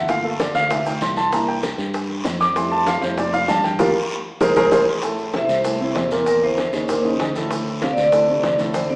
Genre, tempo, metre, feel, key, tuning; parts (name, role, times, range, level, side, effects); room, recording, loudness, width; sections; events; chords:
Afro-Cuban jazz; 194 BPM; 4/4; straight; A4 = 444 Hz
dark baby grand piano; accompaniment; 0.0-9.0 s; A2 to D6; -19 LUFS; equal
fingered electric bass; bass; 0.0-9.0 s; G1 to G2; -28 LUFS; equal
bongos; percussion; 0.1-9.0 s; -27 LUFS; equal
congas; percussion; 0.1-8.8 s; -31 LUFS; equal
guiro; percussion; 0.1-9.0 s; -32 LUFS; left 1 dB
maracas; percussion; 0.1-9.0 s; -38 LUFS; equal
vibraphone with medium hard mallets; melody; 5.4-9.0 s; Bb4 to F5; -19 LUFS; equal
wet large studio reverb, RT60 1.4 s; band playing live in one room, small speaker sound; -17 LUFS; side -27 dB against mid
0.0-5.0 A section; 5.0-9.0 B section
grand piano solo 0.0-5.0; band accent 3.8-5.0; drum fill 8.7
0.1 Gm9; 1.3 C9; 2.6 Fmaj7; 3.8 Gm7; 4.4 Abadd9/C; 5.0 C6; 6.3 C9; 6.9 Eb5; 7.5 D5